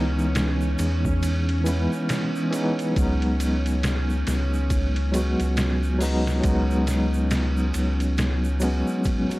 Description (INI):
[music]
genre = trip hop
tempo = 69 BPM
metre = 4/4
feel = swing 59% on 16ths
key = unclear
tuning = A4 = 439 Hz
[part]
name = tine electric piano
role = accompaniment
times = 0.0-9.4 s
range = E3 to F#4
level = -25 LUFS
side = equal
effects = medium tremolo, tape echo
[part]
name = round analog bass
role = bass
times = 0.0-8.8 s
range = C#2 to E2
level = -24 LUFS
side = equal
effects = none
[part]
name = bowed-like drone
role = texture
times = 0.0-9.4 s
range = C#4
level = -33 LUFS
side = right 2 dB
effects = built-in reverb
[part]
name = tube shaker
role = percussion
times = 0.2-9.4 s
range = none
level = -42 LUFS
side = right 4 dB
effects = none
[part]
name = trip hop sampler-style drum kit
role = drums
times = 0.4-9.4 s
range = hi-hat, kick drum, ride cymbal, snare drum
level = -29 LUFS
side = equal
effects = none
[sound]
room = digital ambience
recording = dry, gritty hardware recording, vinyl crackle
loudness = -21 LUFS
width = side -19 dB against mid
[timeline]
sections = 0.0-9.4 A section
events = none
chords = 0.0 C#m7; 3.0 G#m7/C#